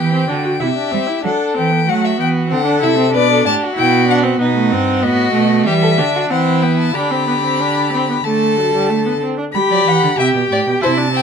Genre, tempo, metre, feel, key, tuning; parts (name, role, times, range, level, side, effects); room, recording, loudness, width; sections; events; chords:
classical, baroque-style fugue for string quartet; 94 BPM; 4/4; straight; C major, G major from 4.4 s; A4 = 439 Hz
rich violin; melody; 0.0-11.2 s; D5 to B5; -19 LUFS; left 7 dB
rich violin; second line; 0.0-11.2 s; D#4 to G5; -20 LUFS; left 3 dB
rich viola; accompaniment; 0.0-11.2 s; F#3 to G4; -18 LUFS; right 2 dB
rich cello; bass; 0.0-11.2 s; G2 to G3; -19 LUFS; right 4 dB
light reverb; -13 LUFS; side -6 dB against mid
0.0-9.5 A section; 9.5-11.2 B section
0.0 G; 0.6 C; 3.1 Bm; 4.4 B7; 5.7 Em; 6.9 Dsus4; 8.2 D; 9.5 G